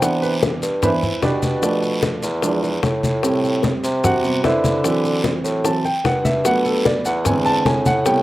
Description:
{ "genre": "Afro-Cuban jazz", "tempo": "149 BPM", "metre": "4/4", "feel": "straight", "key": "unclear", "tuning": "A4 = 440 Hz", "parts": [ { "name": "warm concert grand piano", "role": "accompaniment", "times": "0.0-8.2 s", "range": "C3 to A5", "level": "-19 LUFS", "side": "right 1 dB", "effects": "none" }, { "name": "mellow bassoon", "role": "bass", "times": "0.0-8.2 s", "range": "E2 to D3", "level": "-22 LUFS", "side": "equal", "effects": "none" }, { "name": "bongos", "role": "percussion", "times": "0.0-8.2 s", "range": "none", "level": "-24 LUFS", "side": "left 6 dB", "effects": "none" }, { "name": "congas", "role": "percussion", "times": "0.0-8.2 s", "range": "none", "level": "-23 LUFS", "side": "left 1 dB", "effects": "none" }, { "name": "guiro", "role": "percussion", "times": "0.0-8.2 s", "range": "none", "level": "-32 LUFS", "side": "right 1 dB", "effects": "none" }, { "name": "maracas", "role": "percussion", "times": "0.0-8.2 s", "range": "none", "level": "-31 LUFS", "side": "left 4 dB", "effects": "none" } ], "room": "little or no reverb", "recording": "recorded outdoors, with no room sound", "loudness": "-16 LUFS", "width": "side -16 dB against mid", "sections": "0.0-8.2 A section", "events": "grand piano solo 0.0-8.2", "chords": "0.0 Cmaj9; 1.6 Bm7b5; 2.4 E7b9; 3.2 Am9; 4.8 D9; 6.5 Gmaj9; 7.3 E7b13" }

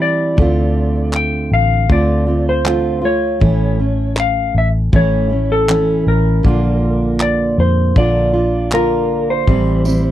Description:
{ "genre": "acoustic pop", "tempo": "79 BPM", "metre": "4/4", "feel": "straight", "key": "D minor", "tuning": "A4 = 438 Hz", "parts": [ { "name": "clean lap steel guitar", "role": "melody", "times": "0.0-10.1 s", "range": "A4 to G5", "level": "-18 LUFS", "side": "left 2 dB", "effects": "none" }, { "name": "fingerpicked steel-string acoustic guitar", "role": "accompaniment", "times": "0.0-10.1 s", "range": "A2 to F4", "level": "-18 LUFS", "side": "right 3 dB", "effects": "none" }, { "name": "vintage muted fingered electric bass", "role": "bass", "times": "0.4-10.1 s", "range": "A1 to F2", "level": "-17 LUFS", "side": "left 1 dB", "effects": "none" }, { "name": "modern studio drum kit", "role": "drums", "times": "0.4-10.0 s", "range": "handclaps, kick drum, tambourine", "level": "-16 LUFS", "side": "left 1 dB", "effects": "none" } ], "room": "little or no reverb", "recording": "dry, close 1970s-style studio recording", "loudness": "-12 LUFS", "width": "side -12 dB against mid", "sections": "0.0-10.1 A section", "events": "none", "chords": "0.4 Dm7; 3.4 A; 6.4 Bb; 9.5 Am7" }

